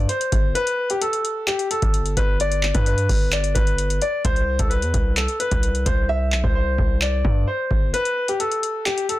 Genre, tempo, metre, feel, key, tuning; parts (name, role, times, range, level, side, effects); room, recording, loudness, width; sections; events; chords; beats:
hip hop, trap; 130 BPM; 4/4; half-time; G major; A4 = 439 Hz
clear concert grand piano; melody; 0.0-9.2 s; G4 to E5; -23 LUFS; left 1 dB; low-pass filter, ping-pong delay
distorted 808-style bass; bass; 0.0-7.9 s; G1 to G2; -23 LUFS; equal; distortion
booming analog drum machine; drums; 0.1-9.2 s; handclaps, hi-hat, kick drum; -22 LUFS; equal
digital ambience; dense, heavily limited modern master; -18 LUFS; side -16 dB against mid
0.0-9.2 A section
break 0.6-1.5; hi-hats muted 6.1-7.9; kick muted 7.9-9.2
0.0 C5; 4.2 N.C.
0.09 | 0.55 1.01 1.48 1.94 | 2.40 2.86 3.32 3.78 | 4.25 4.71 5.17 5.63 | 6.09 6.55 7.01 7.48 | 7.94 8.40 8.86